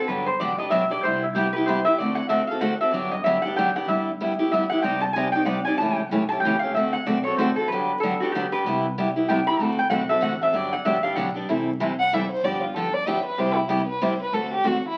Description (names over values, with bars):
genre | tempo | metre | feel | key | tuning
acoustic string swing (jazz manouche) | 189 BPM | 3/4 | swing 61% on 8ths | G major | A4 = 437 Hz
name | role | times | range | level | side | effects
lap resonator guitar | second line | 0.0-11.3 s | E4 to B5 | -26 LUFS | equal | none
picked steel-string acoustic guitar | accompaniment | 0.0-14.8 s | C3 to D5 | -27 LUFS | equal | none
upright bass | bass | 0.1-14.9 s | G1 to E2 | -38 LUFS | equal | none
dark violin | melody | 12.0-15.0 s | E4 to F#5 | -27 LUFS | equal | none
room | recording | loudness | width
wet studio reverb, RT60 0.6 s | very old 78 rpm record, vinyl crackle | -23 LUFS | mono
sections
0.0-3.9 A section; 3.9-11.5 A section; 11.5-15.0 A section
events
resonator guitar played with a steel bar solo 0.0-11.5; violin solo 11.5-15.0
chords
0.1 Gmaj7; 1.0 Cmaj7; 2.0 D7; 2.9 Gmaj7; 3.9 G6; 4.8 Cmadd9; 5.8 A7; 6.7 D7; 7.7 Gmaj7; 8.6 Cmaj7; 9.6 D7; 10.5 Gmaj7; 11.5 C6; 12.4 G7; 13.4 Cmaj7; 14.3 D7